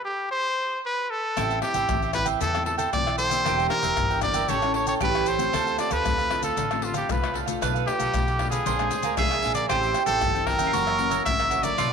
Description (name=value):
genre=samba and choro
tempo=115 BPM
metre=4/4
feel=straight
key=A minor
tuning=A4 = 441 Hz
part: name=brilliant trumpet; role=melody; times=0.0-11.9 s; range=F4 to E5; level=-25 LUFS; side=equal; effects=none
part: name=mandolin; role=second line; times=1.4-11.9 s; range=E4 to C5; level=-30 LUFS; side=right 9 dB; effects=none
part: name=cavaquinho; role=accompaniment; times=1.4-11.9 s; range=D4 to Ab5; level=-30 LUFS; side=right 10 dB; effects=none
part: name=nylon-string guitar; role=accompaniment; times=1.4-11.9 s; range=F#2 to G4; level=-34 LUFS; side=left 11 dB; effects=none
part: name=upright bass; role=bass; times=1.4-11.9 s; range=E1 to E2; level=-32 LUFS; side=equal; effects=none
part: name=maracas, surdo, pandeiro and tamborim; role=percussion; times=1.4-11.9 s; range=none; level=-30 LUFS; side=left 5 dB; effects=none
room=moderate plate reverb, RT60 3.5 s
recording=1960s-style stereo with parts hard left and right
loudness=-22 LUFS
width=side -6 dB against mid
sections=0.0-1.4 A section; 1.4-11.9 B section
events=stop 0.0-1.4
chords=0.0 N.C.; 1.4 Am7; 3.5 Em7b5; 4.5 A7; 5.5 Dm7; 7.6 Bm7b5; 8.7 Bb9; 9.7 Am7; 10.7 F#7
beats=0.33 0.85 | 1.37 1.89 2.41 2.93 | 3.45 3.97 4.49 5.01 | 5.53 6.05 6.58 7.09 | 7.62 8.14 8.66 9.18 | 9.70 10.22 10.74 11.26 | 11.78